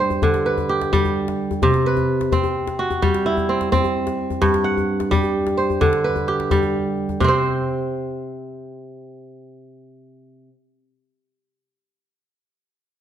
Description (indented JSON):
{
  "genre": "west african traditional, West African string and xylophone music",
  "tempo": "86 BPM (dotted quarters)",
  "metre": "12/8",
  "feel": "straight",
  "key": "unclear",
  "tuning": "A4 = 440 Hz",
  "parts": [
    { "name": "kora", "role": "arpeggios", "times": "0.0-10.6 s", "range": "G2 to F#5", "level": "-19 LUFS", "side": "right 2 dB", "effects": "none" },
    { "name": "djembe", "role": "percussion", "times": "0.1-7.4 s", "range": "none", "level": "-24 LUFS", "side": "left 5 dB", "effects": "none" }
  ],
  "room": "moderate recital hall reverb, RT60 1.5 s",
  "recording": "close, detailed microphones",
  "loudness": "-18 LUFS",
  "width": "side -10 dB against mid",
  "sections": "0.0-7.2 A section; 7.2-10.0 B section",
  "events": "none",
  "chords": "0.0 G; 1.6 C; 4.4 G; 7.2 N.C."
}